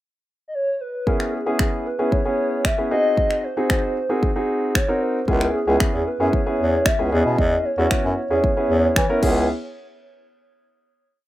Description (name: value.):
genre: dance-pop.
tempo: 114 BPM.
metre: 4/4.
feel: straight.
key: C# dorian.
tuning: A4 = 438 Hz.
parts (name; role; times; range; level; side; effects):
hollow clarinet-like synth lead; melody; 0.5-9.5 s; G#4 to E5; -23 LUFS; equal; chorus, digital delay.
warm baby grand piano; accompaniment; 1.1-9.5 s; B3 to A#4; -23 LUFS; equal; plate reverb.
pop drum kit; drums; 1.1-9.3 s; crash cymbal, finger snaps, kick drum; -21 LUFS; equal; none.
bright bass clarinet; bass; 5.3-9.5 s; C#2 to E3; -21 LUFS; equal; sidechain pumping.
room: moderate studio reverb, RT60 0.6 s.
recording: rough home demo mix.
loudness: -18 LUFS.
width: side -15 dB against mid.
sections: 0.0-1.1 pickup bar; 1.1-9.5 verse; 9.5-11.3 final hit.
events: none.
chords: 0.0 N.C.; 1.1 C#m7; 2.9 G#7/B#; 5.3 C#m7; 7.1 E6; 9.2 C#m7; 9.5 N.C..